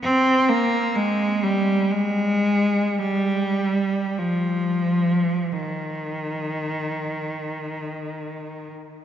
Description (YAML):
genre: classical, free, expressive piece for unaccompanied cello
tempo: free time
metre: none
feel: none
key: unclear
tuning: A4 = 439 Hz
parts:
  - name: clear cello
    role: solo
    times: 0.0-8.7 s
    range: Eb3 to C4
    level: -21 LUFS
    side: equal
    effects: none
room: wet church reverb, RT60 4.1 s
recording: nothing above 7.7 kHz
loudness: -20 LUFS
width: side -10 dB against mid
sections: 0.0-9.0 A section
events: none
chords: none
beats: free time